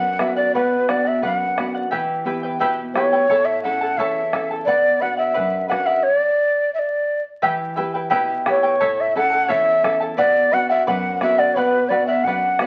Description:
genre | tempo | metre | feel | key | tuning
andean folk, Andean ensemble | 87 BPM | 2/4 | straight | B minor | A4 = 439 Hz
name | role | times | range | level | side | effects
breathy large quena | melody | 0.0-12.7 s | B4 to F#5 | -20 LUFS | equal | none
charango | accompaniment | 0.0-12.7 s | E4 to A5 | -25 LUFS | equal | none
nylon-string guitar | accompaniment | 0.0-12.7 s | E2 to B4 | -30 LUFS | equal | none
bombo | percussion | 0.2-12.7 s | none | -30 LUFS | equal | none
room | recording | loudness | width
moderate studio reverb, RT60 0.9 s | very old 78 rpm record, vinyl crackle | -19 LUFS | mono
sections
0.0-7.4 A section; 7.4-12.7 A section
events
none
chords
0.0 Bm; 1.9 Em; 3.3 A; 4.7 Bm; 7.4 Em; 8.8 A; 10.2 Bm

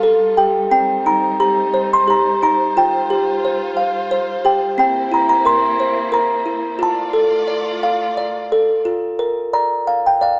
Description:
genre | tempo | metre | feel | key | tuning
children's music, lullaby | 88 BPM | 3/4 | straight | Bb major | A4 = 443 Hz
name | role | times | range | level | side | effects
music box | melody | 0.0-10.4 s | C4 to C6 | -17 LUFS | equal | none
dark chamber string section | sustained chords | 0.0-8.8 s | G3 to D5 | -29 LUFS | equal | none
room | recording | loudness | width
light reverb | small speaker sound | -17 LUFS | mono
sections
0.0-8.9 A section; 8.9-10.4 B section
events
none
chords
0.0 Fadd9; 0.7 Cm; 2.8 Fsus2; 4.8 C7; 6.8 F6; 8.9 Bb

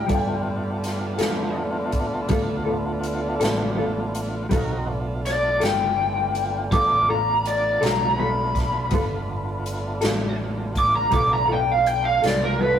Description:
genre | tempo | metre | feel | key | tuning
slow blues | 54 BPM (dotted quarters) | 12/8 | straight | G mixolydian | A4 = 439 Hz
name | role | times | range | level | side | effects
lead guitar through a small cranked amp | melody | 0.0-12.8 s | Bb4 to D6 | -22 LUFS | equal | overdrive, tape echo
tonewheel organ | sustained chords | 0.0-12.8 s | A3 to Bb4 | -29 LUFS | right 1 dB | slow rotary speaker, overdrive
fingered electric bass | bass | 0.0-12.8 s | G1 to G2 | -29 LUFS | right 1 dB | none
mellow electric guitar | accompaniment | 0.1-12.8 s | G3 to A4 | -26 LUFS | left 2 dB | tremolo
swinging big-band drum kit | drums | 0.1-12.4 s | hi-hat, kick drum, snare drum | -28 LUFS | equal | none
room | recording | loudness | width
wet booth ambience, RT60 0.2 s | rough rehearsal-room recording | -20 LUFS | side -9 dB against mid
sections
0.0-12.8 A section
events
lead electric guitar solo 0.0-12.8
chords
0.1 G9

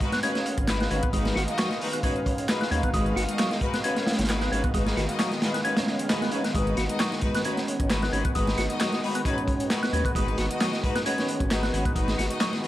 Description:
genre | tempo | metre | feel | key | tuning
breakbeat, breaks | 133 BPM | 4/4 | swing 54% on 16ths | G# dorian | A4 = 440 Hz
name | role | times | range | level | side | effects
lush unison pad | sustained chords | 0.0-12.7 s | D#3 to E#5 | -32 LUFS | right 1 dB | chorus, sidechain pumping
clear studio string section | stabs | 0.0-12.7 s | G#3 to D#5 | -31 LUFS | left 2 dB | analog delay
crunchy breakbeat drum kit | drums | 0.0-12.7 s | hi-hat, kick drum, snare drum | -28 LUFS | equal | none
percussive tonewheel organ | riff | 0.1-12.5 s | F#3 to F#4 | -30 LUFS | equal | chorus vibrato, slow rotary speaker, vintage 12-bit sampler grit, analog delay
punchy analog drum machine | drums | 0.1-12.6 s | handclaps, hi-hat | -36 LUFS | equal | overdrive
saturated sub bass | bass | 0.6-12.3 s | G#1 to D#2 | -29 LUFS | equal | none
swell | sound effects | 5.9-6.5 s | none | -41 LUFS | right 4 dB | none
room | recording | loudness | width
light reverb, small room ambience | dry, gritty hardware recording, vinyl crackle | -23 LUFS | side -14 dB against mid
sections
0.0-12.7 A section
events
kick drops out 5.6-6.5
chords
0.0 G#m7

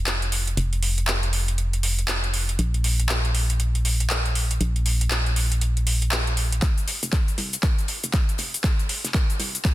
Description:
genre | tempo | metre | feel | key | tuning
deep house | 119 BPM | 4/4 | swing 61% on 16ths | unclear | A4 = 439 Hz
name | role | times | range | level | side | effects
organ-like FM bass | bass | 0.0-9.7 s | F1 to C2 | -23 LUFS | equal | sidechain pumping, high-pass filter
deep house drum kit | drums | 0.1-9.7 s | cabasa, handclaps, hi-hat | -26 LUFS | equal | overdrive
damped 70s drum kit | drums | 6.6-9.7 s | hi-hat, snare drum | -37 LUFS | left 5 dB | none
electronic kick drum | drums | 6.6-9.7 s | none | -22 LUFS | equal | overdrive
room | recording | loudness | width
studio reverb | dense, heavily limited modern master | -21 LUFS | side -16 dB against mid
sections
0.0-6.6 A section; 6.6-9.7 B section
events
build-up 6.6-9.7; drum fill 6.6-9.7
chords
none

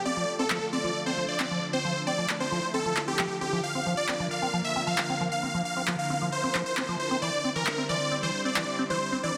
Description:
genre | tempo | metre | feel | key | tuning
uplifting trance | 134 BPM | 4/4 | straight | unclear | A4 = 440 Hz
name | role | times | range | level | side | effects
lush unison pad | sustained chords | 0.0-9.4 s | D3 to C5 | -38 LUFS | equal | chorus, phaser
supersaw chords | melody | 0.1-9.4 s | G4 to F5 | -31 LUFS | equal | phaser, cassette tape, dub echo
liquid acid bass | arpeggios | 0.1-9.3 s | E3 to C4 | -35 LUFS | equal | phaser, analog chorus, dub echo
electronic handclaps | drums | 0.5-8.7 s | none | -35 LUFS | equal | overdrive
room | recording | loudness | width
moderate lush hall reverb, RT60 2.1 s | dense, heavily limited modern master | -28 LUFS | mono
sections
0.0-9.4 A section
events
filter sweep on acid bass 0.0-9.4; filter sweep on analog synth pad 0.0-9.4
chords
0.1 Dm; 3.6 Bb; 7.2 Cadd9

